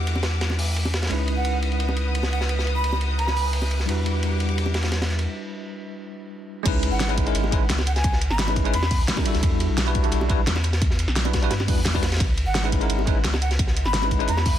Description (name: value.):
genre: liquid drum and bass.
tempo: 173 BPM.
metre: 4/4.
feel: straight.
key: unclear.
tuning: A4 = 440 Hz.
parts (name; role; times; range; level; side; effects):
bell-like tine electric piano; accompaniment; 0.0-14.3 s; G3 to B4; -29 LUFS; equal; medium stereo tremolo, dub echo.
warm studio string section; sustained chords; 0.0-5.3 s; G3 to D#6; -32 LUFS; left 1 dB; sidechain pumping.
warm sub bass; bass; 0.0-14.6 s; G#1 to G2; -24 LUFS; equal; none.
crunchy breakbeat drum kit; drums; 0.1-14.5 s; hi-hat, ride cymbal, snare drum; -30 LUFS; equal; high-pass filter on cymbals, studio reverb, high-pass filter on hats, high-pass filter on snare, high-pass filter on room.
bongos; percussion; 0.2-5.1, 7.4-14.4 s; none; -34 LUFS; right 1 dB; none.
breathy mellow silver concert flute; melody; 1.4-3.5, 6.9-9.0, 12.5-14.5 s; F#5 to B5; -30 LUFS; right 1 dB; dub echo.
electronic kick drum; drums; 6.7-14.5 s; none; -24 LUFS; equal; studio reverb.
pop drum kit; drums; 6.7-14.5 s; crash cymbal, hi-hat, snare drum; -28 LUFS; equal; low-pass filter on hats, studio reverb, low-pass filter on cymbals, low-pass filter on snare.
room: small room reverb.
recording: dense, heavily limited modern master.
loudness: -20 LUFS.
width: side -11 dB against mid.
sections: 0.0-6.7 A section; 6.7-14.6 B section.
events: break 5.3-6.7; drop 6.7-14.6.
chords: 0.0 Em9; 1.1 C#m9; 3.9 Em9; 6.7 C#m9; 9.4 Em9; 12.2 C#m9.